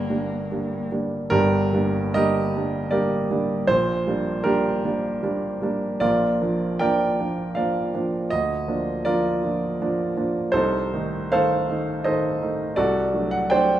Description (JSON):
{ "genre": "classical, romantic duo for cello and grand piano", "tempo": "69-83 BPM", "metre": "3/4", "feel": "rubato", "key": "G minor", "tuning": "A4 = 440 Hz", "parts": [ { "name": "warm cello", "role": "melody", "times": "0.0-0.9 s", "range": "Bb3", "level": "-32 LUFS", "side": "left 3 dB", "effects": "none" }, { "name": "warm baby grand piano", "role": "accompaniment", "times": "0.0-13.8 s", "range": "G1 to G5", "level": "-20 LUFS", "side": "right 1 dB", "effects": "none" } ], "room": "moderate recital hall reverb, RT60 1.7 s", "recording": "minimal, uncompressed stereo recording", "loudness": "-21 LUFS", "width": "side -12 dB against mid", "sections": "0.0-1.3 A section; 1.3-13.8 B section", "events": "none", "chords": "0.0 Gm; 3.7 Gm/Bb; 6.0 Bb; 8.3 Bb/D; 10.5 Adim/C; 12.8 D7/C", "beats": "0.49 | 1.31 2.15 2.92 | 3.68 4.45 5.23 | 6.00 6.82 7.57 | 8.31 9.05 9.79 | 10.54 11.31 12.05 | 12.78 13.50" }